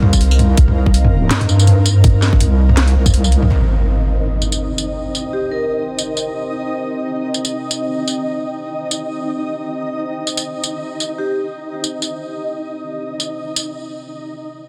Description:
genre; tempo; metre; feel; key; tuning
half-time drum and bass; 164 BPM; 4/4; swing 57% on 16ths, half-time; C minor; A4 = 440 Hz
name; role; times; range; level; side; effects
deep dark ambient pad; sustained chords; 0.0-13.7 s; C4 to G5; -29 LUFS; equal; chorus, built-in reverb, sidechain pumping
deep soft wobble bass; bass; 0.0-3.5 s; C2 to G2; -14 LUFS; equal; chorus
drum and bass drum kit; drums; 0.0-13.6 s; hi-hat, snare drum, tambourine, toms; -20 LUFS; equal; none
flickering grainy texture; texture; 0.0-13.7 s; Eb4 to Eb5; -28 LUFS; equal; built-in reverb
electronic kick drum; drums; 0.1-3.1 s; none; -14 LUFS; equal; none
impact; sound effects; 3.5-5.0 s; none; -21 LUFS; equal; none
vibraphone with medium hard mallets; melody; 5.3-5.8, 11.2-11.4 s; G4 to Bb4; -28 LUFS; equal; digital delay
room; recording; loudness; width
light reverb; dense, heavily limited modern master; -17 LUFS; mono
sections
0.0-3.5 A section; 3.5-14.7 B section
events
drop 0.0-3.5; impact 3.5-5.0; break 13.7-14.7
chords
0.0 Cm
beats
0.21 | 0.58 0.94 1.31 1.67 | 2.04 2.41 2.77 3.14 | 3.50 3.87 4.24 4.60 | 4.97 5.33 5.70 6.06 | 6.43 6.80 7.16 7.53 | 7.89 8.26 8.62 8.99 | 9.36 9.72 10.09 10.45 | 10.82 11.19 11.55 11.92 | 12.28 12.65 13.02 13.38 | 13.75

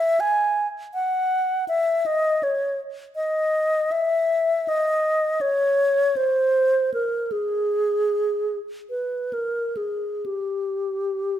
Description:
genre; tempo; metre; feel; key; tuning
classical, free, expressive piece for unaccompanied alto flute; 61-83 BPM; 3/4; rubato; unclear; A4 = 440 Hz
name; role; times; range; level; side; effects
mellow alto flute; solo; 0.0-11.4 s; G4 to G#5; -20 LUFS; equal; none
room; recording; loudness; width
moderate recital hall reverb, RT60 1.5 s; close, detailed microphones; -21 LUFS; side -11 dB against mid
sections
0.0-11.4 A section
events
none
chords
none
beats
0.20 | 0.94 1.69 2.43 | 3.16 3.92 4.69 | 5.42 6.17 6.95 | 7.71 8.50 9.33 | 10.26 11.23

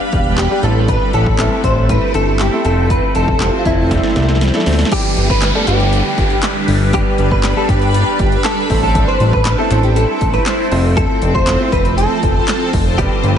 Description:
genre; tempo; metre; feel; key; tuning
dance-pop; 119 BPM; 4/4; straight; G mixolydian; A4 = 440 Hz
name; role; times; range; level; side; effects
direct-recorded clean electric guitar; melody; 0.0-13.3 s; E4 to F5; -18 LUFS; equal; ensemble chorus, diffuse ambient delay
clear concert grand piano; accompaniment; 0.0-13.4 s; G3 to D5; -23 LUFS; right 1 dB; sidechain pumping
shimmering ambient pad; sustained chords; 0.0-13.4 s; F3 to B4; -20 LUFS; equal; chorus, built-in reverb, phaser, sidechain pumping
fat analog bass; bass; 0.1-13.4 s; E1 to D2; -16 LUFS; equal; sidechain pumping
house drum kit; drums; 0.1-13.4 s; crash cymbal, handclaps, hi-hat, kick drum, snare drum; -18 LUFS; equal; none
swell and downlifter; sound effects; 4.4-9.0 s; none; -24 LUFS; equal; none
group handclap; percussion; 5.4-12.6 s; none; -32 LUFS; left 4 dB; none
room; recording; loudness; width
light reverb; nothing above 10.6 kHz; -12 LUFS; side -8 dB against mid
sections
0.0-4.9 A section; 4.9-13.4 B section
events
drum fill 3.9-4.9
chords
0.0 G; 0.6 Am; 2.6 F; 3.9 Dsus2; 4.9 G; 8.7 Am; 10.7 F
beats
0.38 | 0.88 1.39 1.89 2.40 | 2.90 3.40 3.91 4.41 | 4.92 5.42 5.93 6.43 | 6.93 7.44 7.94 8.45 | 8.95 9.46 9.96 10.46 | 10.97 11.47 11.98 12.48 | 12.98

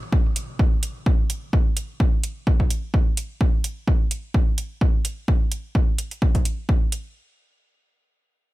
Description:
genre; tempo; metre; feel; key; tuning
minimal techno; 128 BPM; 4/4; swing 55% on 16ths; none; none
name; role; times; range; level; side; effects
electronic kick drum; drums; 0.1-6.8 s; none; -19 LUFS; equal; none
electronic hi-hat; drums; 0.4-7.0 s; none; -29 LUFS; right 2 dB; overdrive
room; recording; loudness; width
little or no reverb; none; -20 LUFS; side -18 dB against mid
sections
0.0-7.2 A section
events
none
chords
none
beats
0.12 0.59 1.06 | 1.53 2.00 2.47 2.94 | 3.41 3.88 4.34 4.81 | 5.28 5.75 6.22 6.69

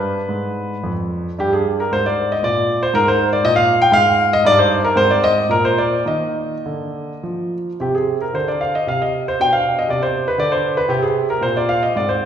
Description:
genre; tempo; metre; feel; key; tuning
classical, baroque-style suite movement for grand piano; 100-122 BPM; 3/4; rubato; Eb major, C minor from 7.8 s; A4 = 441 Hz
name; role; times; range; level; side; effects
warm grand piano; solo; 0.0-12.3 s; F2 to G5; -15 LUFS; equal; none
room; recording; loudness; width
wet recital hall reverb, RT60 1.6 s; recorded in a church or concert hall; -15 LUFS; side -8 dB against mid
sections
0.0-7.8 A section; 7.8-12.3 A section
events
none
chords
0.0 G; 1.4 Gm; 2.9 Ab5; 4.4 Eb/G; 5.0 Ab; 5.5 N.C.; 6.1 Eb5; 7.8 Cmadd9; 9.4 Gadd11/B (rootless); 10.9 Bb7sus2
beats
0.29 0.83 | 1.38 1.92 2.43 | 2.94 3.44 3.93 | 4.44 4.96 5.50 | 6.07 6.66 7.23 | 7.80 8.34 8.87 | 9.39 9.89 10.39 | 10.90 11.42 11.95

